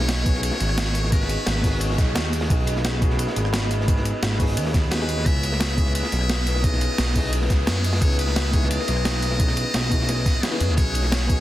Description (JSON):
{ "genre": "liquid drum and bass", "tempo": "174 BPM", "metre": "4/4", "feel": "straight", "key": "C# minor", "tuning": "A4 = 440 Hz", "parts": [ { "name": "trumpet with metal mute", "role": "melody", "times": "0.0-1.8, 4.9-11.4 s", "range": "G#4 to E5", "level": "-29 LUFS", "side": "equal", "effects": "digital delay" }, { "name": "felt-muted upright piano", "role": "accompaniment", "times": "0.0-11.4 s", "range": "B3 to G#4", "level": "-30 LUFS", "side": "left 2 dB", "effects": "tape echo" }, { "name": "airy breathy pad", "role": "sustained chords", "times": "0.0-11.4 s", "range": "G#4 to D#6", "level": "-33 LUFS", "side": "left 1 dB", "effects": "chorus" }, { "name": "smooth gliding synth bass", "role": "bass", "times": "0.0-11.4 s", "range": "G#1 to F#2", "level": "-24 LUFS", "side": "equal", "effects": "none" }, { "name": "crunchy breakbeat drum kit", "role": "drums", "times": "0.0-11.4 s", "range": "hi-hat, ride cymbal, snare drum", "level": "-31 LUFS", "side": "equal", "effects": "high-pass filter on cymbals, high-pass filter on hats, high-pass filter on snare, high-pass filter on room" }, { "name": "breakbeat sampler-style drum kit", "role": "drums", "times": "0.1-11.4 s", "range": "hi-hat, rim click, snare drum", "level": "-27 LUFS", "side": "equal", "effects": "none" }, { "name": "electronic kick drum", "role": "drums", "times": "0.3-11.4 s", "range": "none", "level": "-22 LUFS", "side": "equal", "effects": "none" } ], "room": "studio ambience", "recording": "dense, heavily limited modern master", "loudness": "-19 LUFS", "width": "side -14 dB against mid", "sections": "0.0-11.4 A section", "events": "none", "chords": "0.0 B69; 5.3 C#m9; 10.8 B69" }